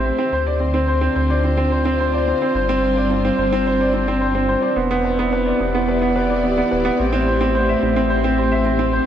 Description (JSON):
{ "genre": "piano and strings electronica", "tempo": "108 BPM", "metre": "4/4", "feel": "straight", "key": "D dorian", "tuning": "A4 = 441 Hz", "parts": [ { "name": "dark studio string section", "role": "sustained chords", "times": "0.0-9.1 s", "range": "D3 to D5", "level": "-24 LUFS", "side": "left 2 dB", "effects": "none" }, { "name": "clear baby grand piano", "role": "riff", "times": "0.0-9.1 s", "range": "B3 to E5", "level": "-18 LUFS", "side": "right 1 dB", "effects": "digital delay" }, { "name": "dark detuned saw bass", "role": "bass", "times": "0.0-9.0 s", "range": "D1 to D2", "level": "-23 LUFS", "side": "equal", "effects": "none" } ], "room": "wet huge ambient reverb, RT60 8.2 s", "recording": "dark, warm production", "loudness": "-16 LUFS", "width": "side -10 dB against mid", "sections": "0.0-9.1 A section", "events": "build-up 0.0-9.1", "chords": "0.3 Dm7; 2.6 G7sus4; 4.8 Em7; 7.0 Am7" }